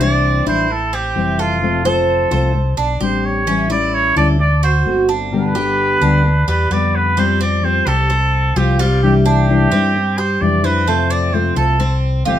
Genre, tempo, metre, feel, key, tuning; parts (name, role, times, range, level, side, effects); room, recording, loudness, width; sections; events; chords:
latin; 130 BPM; 4/4; straight; A4 = 440 Hz
trumpet with straight mute; melody; 0.0-12.4 s; F4 to D5; -18 LUFS; right 2 dB
nylon-string guitar; accompaniment; 0.0-12.4 s; B2 to G4; -19 LUFS; left 4 dB
Cuban tres; arpeggios; 0.0-12.4 s; G3 to C5; -21 LUFS; right 3 dB
fingered electric bass; bass; 0.0-12.4 s; F1 to G2; -18 LUFS; equal
moderate studio reverb, RT60 0.6 s; minimal, uncompressed stereo recording; -13 LUFS; side -11 dB against mid
0.0-7.2 A section; 7.2-12.4 B section
0.0 Cadd9; 0.7 Am7; 1.6 F; 2.5 Csus2; 3.5 A7; 4.4 D7; 5.3 G; 7.2 Fsus2; 9.0 Cadd9; 10.9 F